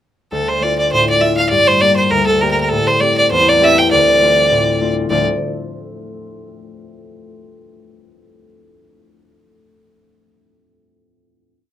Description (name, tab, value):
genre	celtic folk, Celtic reel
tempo	201 BPM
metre	4/4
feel	swing 55% on 8ths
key	D minor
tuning	A4 = 439 Hz
part	clear fiddle	melody	0.3-5.3 s	A4 to G5	-12 LUFS	right 1 dB	none
part	concert harp	accompaniment	0.3-6.6 s	D2 to A4	-19 LUFS	left 3 dB	none
room	light reverb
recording	minimal, uncompressed stereo recording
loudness	-11 LUFS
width	side -11 dB against mid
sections	0.3-5.1 A section; 5.1-6.3 final chord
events	none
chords	0.3 Dm; 1.5 Gm; 2.7 Am7; 3.9 Dm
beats	| 0.31 0.61 0.91 1.21 | 1.51 1.81 2.11 2.40 | 2.70 3.00 3.30 3.60 | 3.90 4.20 4.50 4.80 | 5.10 5.40 5.70 6.00